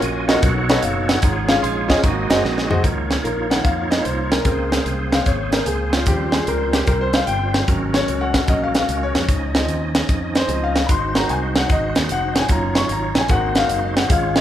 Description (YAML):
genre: uptempo gospel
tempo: 149 BPM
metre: 4/4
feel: swing 66% on 8ths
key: Db major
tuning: A4 = 440 Hz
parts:
  - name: bright tonewheel organ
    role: sustained chords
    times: 0.0-14.4 s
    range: F3 to Ab5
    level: -25 LUFS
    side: right 2 dB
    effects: fast rotary speaker, chorus vibrato
  - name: fingered electric bass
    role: bass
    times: 0.0-14.4 s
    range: F1 to F2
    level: -25 LUFS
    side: equal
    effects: none
  - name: tight funk drum kit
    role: drums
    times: 0.0-14.4 s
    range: hi-hat, kick drum, snare drum, toms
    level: -19 LUFS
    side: equal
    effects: none
  - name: clear baby grand piano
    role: accompaniment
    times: 0.3-14.4 s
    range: Ab2 to Db6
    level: -22 LUFS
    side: left 2 dB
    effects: none
  - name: clean electric guitar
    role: second line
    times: 1.6-2.7 s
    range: Ab3 to Ab4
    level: -27 LUFS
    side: right 6 dB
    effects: none
room: moderate recital hall reverb, RT60 1.8 s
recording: recorded in a church or concert hall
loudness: -16 LUFS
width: side -11 dB against mid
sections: 0.0-2.8 A section; 2.8-14.4 B section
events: drum fill 2.4-2.8; grand piano solo 2.8-14.4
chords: 0.4 Cb9; 1.2 Db/Ab; 2.0 Ab7; 2.8 Db69; 4.5 Bbm9; 6.1 Eb13; 7.7 Ab9sus4; 9.3 Dbmaj9; 10.9 Ab7; 12.5 Ebm9/Gb; 13.3 Ab7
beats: 0.02 0.42 0.83 | 1.23 1.63 2.03 2.44 | 2.84 3.24 3.65 4.05 | 4.45 4.86 5.26 5.66 | 6.07 6.47 6.87 7.28 | 7.68 8.08 8.48 8.89 | 9.29 9.69 10.09 10.49 | 10.89 11.30 11.70 12.10 | 12.50 12.90 13.30 13.70 | 14.10